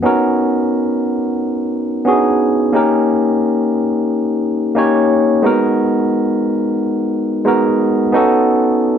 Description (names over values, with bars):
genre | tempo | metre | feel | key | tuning
soul | 89 BPM | 4/4 | swing 54% on 16ths | B major | A4 = 440 Hz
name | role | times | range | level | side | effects
barky tine electric piano | solo | 0.0-9.0 s | G#3 to C#5 | -13 LUFS | equal | none
room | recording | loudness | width
moderate echo chamber reverb, RT60 1.8 s, digital ambience | small room ambience | -13 LUFS | side -8 dB against mid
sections
0.0-9.0 A section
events
none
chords
0.0 Bmaj7; 2.7 D#7; 5.4 G#m9; 8.1 B7